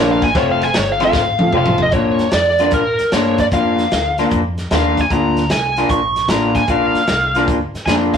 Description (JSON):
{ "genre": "electric blues shuffle", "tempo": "152 BPM", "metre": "4/4", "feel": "swing 67% on 8ths", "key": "Bb major", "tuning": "A4 = 438 Hz", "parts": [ { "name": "biting lead guitar", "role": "melody", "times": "0.0-8.2 s", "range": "Bb4 to Db6", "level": "-17 LUFS", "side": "equal", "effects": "overdrive" }, { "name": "warm upright piano", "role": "accompaniment", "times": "0.0-1.9 s", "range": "F3 to Bb4", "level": "-21 LUFS", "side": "right 3 dB", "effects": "none" }, { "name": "electric guitar through a small old amp", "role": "riff", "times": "0.0-8.2 s", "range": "Bb2 to F4", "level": "-17 LUFS", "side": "left 2 dB", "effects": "none" }, { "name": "upright bass", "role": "bass", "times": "0.0-8.2 s", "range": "F1 to Bb2", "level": "-24 LUFS", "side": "equal", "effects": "none" }, { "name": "crunchy breakbeat drum kit", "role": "drums", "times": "0.2-8.2 s", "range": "hi-hat, kick drum, ride cymbal, snare drum, toms", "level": "-21 LUFS", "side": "equal", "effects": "none" } ], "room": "moderate studio reverb, RT60 0.6 s", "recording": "rough rehearsal-room recording, lossy compression artefacts", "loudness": "-13 LUFS", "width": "side -7 dB against mid", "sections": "0.0-1.9 A section; 1.9-8.2 B section", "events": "lead electric guitar solo 0.0-1.9; drum fill 1.1-1.9", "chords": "0.4 F; 1.9 Bb" }